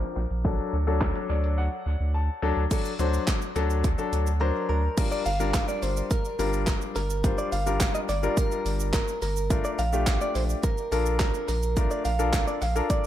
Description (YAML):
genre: dance-pop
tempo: 106 BPM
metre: 4/4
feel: straight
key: G minor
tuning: A4 = 439 Hz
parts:
  - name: clear baby grand piano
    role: accompaniment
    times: 0.0-13.1 s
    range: F3 to A5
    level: -30 LUFS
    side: left 5 dB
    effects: sidechain pumping, dub echo
  - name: warm sub bass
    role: bass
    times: 0.0-12.8 s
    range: G1 to D2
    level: -27 LUFS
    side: right 1 dB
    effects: sidechain pumping
  - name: house drum kit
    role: drums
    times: 0.0-13.1 s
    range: crash cymbal, handclaps, hi-hat, kick drum, shaker, snare drum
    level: -28 LUFS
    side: equal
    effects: dub echo
  - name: direct-recorded clean electric guitar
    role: melody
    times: 4.4-13.1 s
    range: Bb4 to F5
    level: -30 LUFS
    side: right 1 dB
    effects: dub echo
room: little or no reverb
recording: echo-heavy mix, low-pass filter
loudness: -24 LUFS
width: side -12 dB against mid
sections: 0.0-2.7 A section; 2.7-5.0 B section; 5.0-13.1 C section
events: filter sweep 0.0-2.7; grand piano fill 1.0-2.7; drums muted 1.6-2.7; silent gap 4.4-5.0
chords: 0.4 D; 5.0 Gm7; 9.5 Bbmaj7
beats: | 0.45 1.01 1.58 2.15 | 2.71 3.28 3.84 4.41 | 4.97 5.54 6.11 6.67 | 7.24 7.80 8.37 8.94 | 9.50 10.07 10.64 11.20 | 11.77 12.33 12.90